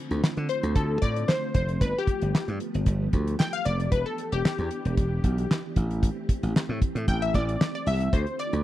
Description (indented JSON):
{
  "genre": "early-eighties boogie funk",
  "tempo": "114 BPM",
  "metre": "4/4",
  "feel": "straight",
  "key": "D dorian",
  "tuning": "A4 = 440 Hz",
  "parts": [
    { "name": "soft string machine", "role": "sustained chords", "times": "0.0-8.6 s", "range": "D3 to G4", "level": "-35 LUFS", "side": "equal", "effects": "ensemble chorus" },
    { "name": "slap bass", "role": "bass", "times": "0.1-8.6 s", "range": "E1 to D3", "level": "-27 LUFS", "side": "equal", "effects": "none" },
    { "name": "damped 70s drum kit", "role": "drums", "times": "0.1-8.6 s", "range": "handclaps, hi-hat, kick drum, snare drum", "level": "-24 LUFS", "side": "equal", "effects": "none" },
    { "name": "funky polysynth comp", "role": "accompaniment", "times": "0.5-8.6 s", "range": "G4 to G5", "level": "-29 LUFS", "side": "left 3 dB", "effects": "chorus" }
  ],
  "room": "studio reverb",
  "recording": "dry, close 1970s-style studio recording",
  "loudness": "-24 LUFS",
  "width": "side -14 dB against mid",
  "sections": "0.0-8.6 A section",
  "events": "analog polysynth solo 0.0-8.6",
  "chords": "0.0 Dm7; 1.8 G9; 3.9 Em7; 5.8 Am7; 8.1 Dm7"
}